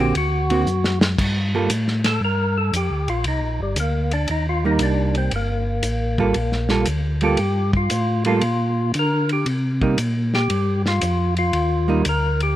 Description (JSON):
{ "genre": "soul jazz organ trio", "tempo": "116 BPM", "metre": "4/4", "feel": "swing 68% on 8ths", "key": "G minor", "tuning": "A4 = 441 Hz", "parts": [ { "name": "percussive tonewheel organ", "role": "melody", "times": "0.0-12.6 s", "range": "G3 to Bb4", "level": "-24 LUFS", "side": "left 1 dB", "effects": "slow rotary speaker, overdrive" }, { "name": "hollow-body jazz guitar", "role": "accompaniment", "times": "0.0-12.0 s", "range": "D3 to A4", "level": "-23 LUFS", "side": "right 4 dB", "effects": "none" }, { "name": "mellow tonewheel organ", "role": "bass", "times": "0.0-12.6 s", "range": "G1 to D3", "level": "-21 LUFS", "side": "equal", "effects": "chorus vibrato, slow rotary speaker" }, { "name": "warm soul drum kit", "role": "drums", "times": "0.1-12.5 s", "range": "crash cymbal, hi-hat, kick drum, ride cymbal, snare drum", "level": "-27 LUFS", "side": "left 1 dB", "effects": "none" } ], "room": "studio reverb", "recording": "rough home demo mix", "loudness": "-18 LUFS", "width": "side -13 dB against mid", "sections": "0.0-1.2 A section; 1.2-12.6 B section", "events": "drum fill 0.7-1.2; tonewheel organ solo 1.2-12.6", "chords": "0.2 Daug7; 1.2 Gm9; 3.3 Cm7; 5.3 Gm9; 9.5 Cm7" }